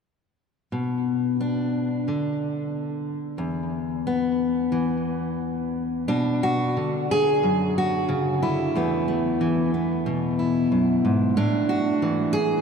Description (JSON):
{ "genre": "folk, solo fingerstyle acoustic guitar", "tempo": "91 BPM", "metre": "4/4", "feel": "rubato", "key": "unclear", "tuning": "A4 = 442 Hz", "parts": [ { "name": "fingerpicked steel-string acoustic guitar", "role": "solo", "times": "0.7-12.6 s", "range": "E2 to G#4", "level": "-21 LUFS", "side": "equal", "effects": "tape echo" } ], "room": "wet cathedral reverb, RT60 6.0 s", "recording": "in a vast, echoing space", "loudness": "-22 LUFS", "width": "side -6 dB against mid", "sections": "0.7-6.1 A section; 6.1-12.6 B section", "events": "none", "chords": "0.7 Bm; 3.4 E5; 6.1 Bm; 8.7 Esus4; 11.4 A5", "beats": "| 0.72 1.40 2.07 2.73 | 3.39 4.05 4.71 5.39 | 6.08 6.75 7.43 8.09 | 8.75 9.40 10.06 10.71 | 11.36 12.02" }